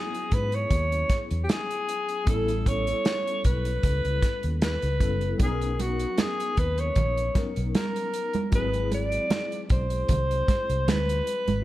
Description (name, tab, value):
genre	lush 1970s-style soul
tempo	77 BPM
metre	4/4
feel	swing 54% on 16ths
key	unclear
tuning	A4 = 442 Hz
part	warm alto saxophone	melody	0.0-11.6 s	F#4 to D5	-28 LUFS	equal	tape echo
part	barky tine electric piano	accompaniment	0.0-11.6 s	F#3 to A#4	-34 LUFS	left 4 dB	ensemble chorus
part	warm soul drum kit	drums	0.1-11.6 s	hi-hat, kick drum, snare drum	-26 LUFS	equal	none
part	vintage muted fingered electric bass	bass	0.3-11.6 s	F#1 to G#2	-28 LUFS	equal	none
part	congas	percussion	5.4-11.6 s	none	-31 LUFS	right 5 dB	none
room	studio ambience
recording	dark, warm production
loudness	-23 LUFS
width	side -15 dB against mid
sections	0.0-11.6 A section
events	none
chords	0.0 E69; 2.3 A9; 5.4 Bmaj9; 8.5 G#7alt